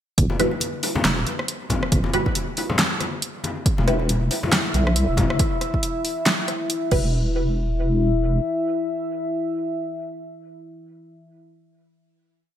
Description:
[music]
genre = deep dubstep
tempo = 138 BPM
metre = 4/4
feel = swing 58% on 16ths, half-time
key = E minor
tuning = A4 = 440 Hz
[part]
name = deep soft wobble bass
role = bass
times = 0.2-8.4 s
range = E1 to B1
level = -21 LUFS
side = equal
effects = chorus
[part]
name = deep house drum kit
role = drums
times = 0.2-7.0 s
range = crash cymbal, handclaps, hi-hat, rim click, snare drum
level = -23 LUFS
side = right 1 dB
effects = overdrive, small room ambience, gated reverb
[part]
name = electronic kick drum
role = drums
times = 0.2-7.0 s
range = none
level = -22 LUFS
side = equal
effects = overdrive, small room ambience
[part]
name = congas and bongos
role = percussion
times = 0.3-5.3 s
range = none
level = -27 LUFS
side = left 3 dB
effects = dub echo
[part]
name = filtered dub chord stab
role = stabs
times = 0.4-4.0, 6.9-11.4 s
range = G3 to B4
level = -27 LUFS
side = right 1 dB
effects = phaser, analog chorus, dub echo
[part]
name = dark analog pad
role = sustained chords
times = 4.2-11.4 s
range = E4 to E5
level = -26 LUFS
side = left 2 dB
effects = chorus, vintage 12-bit sampler grit
[sound]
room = light reverb, digital ambience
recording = bright 1980s-style digital production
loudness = -20 LUFS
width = side -10 dB against mid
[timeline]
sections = 0.2-7.1 drop; 7.1-10.6 final hit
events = drop 0.2-7.1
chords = 0.2 Emadd9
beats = | 0.18 0.61 1.05 1.48 | 1.92 2.35 2.79 3.22 | 3.66 4.09 4.53 4.96 | 5.39 5.83 6.26 6.70 | 7.13 7.57 8.00 8.44 | 8.87 9.31 9.74 10.18

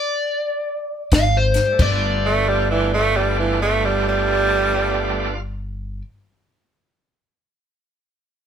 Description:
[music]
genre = electric blues shuffle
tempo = 87-98 BPM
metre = 4/4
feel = swing 64% on 8ths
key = G mixolydian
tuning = A4 = 440 Hz
[part]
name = overdriven semi-hollow guitar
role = melody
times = 0.0-6.0 s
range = C5 to F5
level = -22 LUFS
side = left 2 dB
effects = none
[part]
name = upright bass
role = bass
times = 1.1-6.0 s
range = G1 to Ab1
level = -23 LUFS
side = left 1 dB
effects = none
[part]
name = compact cocktail drum kit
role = drums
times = 1.1-2.0 s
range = crash cymbal, hi-hat, kick drum, snare drum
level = -20 LUFS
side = left 1 dB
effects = none
[part]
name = overdriven tonewheel organ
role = accompaniment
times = 1.7-5.4 s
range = G3 to F4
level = -24 LUFS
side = right 3 dB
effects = slow rotary speaker
[part]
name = bright tenor saxophone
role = second line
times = 2.3-5.5 s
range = E3 to A3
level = -19 LUFS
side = right 3 dB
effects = none
[sound]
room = light reverb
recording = band playing live in one room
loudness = -17 LUFS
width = side -8 dB against mid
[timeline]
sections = 0.0-1.8 A section; 1.8-4.5 B section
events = slowing down 0.0-1.8; stop 0.0-1.1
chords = 0.0 N.C.; 1.1 Ab; 1.8 G9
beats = 0.48 1.12 | 1.79 2.48 3.17 3.85

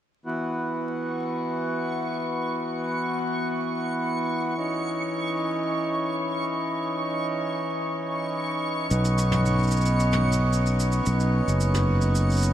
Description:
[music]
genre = folktronica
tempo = 111 BPM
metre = 4/4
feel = straight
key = unclear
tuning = A4 = 440 Hz
[part]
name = backwards swelling texture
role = texture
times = 1.1-12.5 s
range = C#6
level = -34 LUFS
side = right 2 dB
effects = built-in reverb, lush chorus
[part]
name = hand-pumped harmonium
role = sustained chords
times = 0.3-12.5 s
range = E3 to F#4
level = -26 LUFS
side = equal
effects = none
[part]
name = overdriven fingered electric bass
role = bass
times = 8.9-12.5 s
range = F#1 to B1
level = -22 LUFS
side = equal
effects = none
[part]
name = shaker and toms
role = drums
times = 8.9-12.5 s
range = none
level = -33 LUFS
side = right 1 dB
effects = none
[sound]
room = moderate huge ambient reverb, RT60 5.2 s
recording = dreamy mix soaked in reverb, vinyl crackle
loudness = -23 LUFS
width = side -11 dB against mid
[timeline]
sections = 0.3-12.5 A section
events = none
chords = 0.3 Esus2; 4.6 C#madd9; 8.9 Badd9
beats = | 0.26 0.80 1.34 1.88 | 2.42 2.96 3.50 4.04 | 4.58 5.12 5.67 6.21 | 6.75 7.29 7.83 8.37 | 8.91 9.45 9.99 10.53 | 11.07 11.61 12.15

